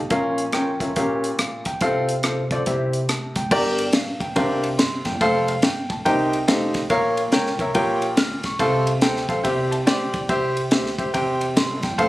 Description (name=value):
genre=uptempo gospel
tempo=142 BPM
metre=4/4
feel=swing 64% on 8ths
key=unclear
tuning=A4 = 438 Hz
part: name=warm upright piano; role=accompaniment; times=0.0-12.1 s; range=G2 to F6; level=-21 LUFS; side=equal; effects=none
part: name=upright bass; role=bass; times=0.0-12.1 s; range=F1 to F2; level=-29 LUFS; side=equal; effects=none
part: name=tight funk drum kit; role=drums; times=0.1-12.1 s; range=crash cymbal, hi-hat, kick drum, ride cymbal, rim click, snare drum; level=-23 LUFS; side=equal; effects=none
room=light reverb, small room ambience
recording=recorded on a phone in the room, club reverb, compression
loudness=-19 LUFS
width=side -17 dB against mid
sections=0.0-3.5 A section; 3.5-12.1 B section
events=upright piano fill 9.4-10.3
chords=0.1 Bbm; 1.0 Bbm6; 1.8 F/C; 2.7 C; 3.5 Gm; 4.4 C9sus4; 5.2 F; 6.1 Cm7; 6.5 F9; 6.9 Bbm; 7.7 Bbm6; 8.6 F/C; 9.4 C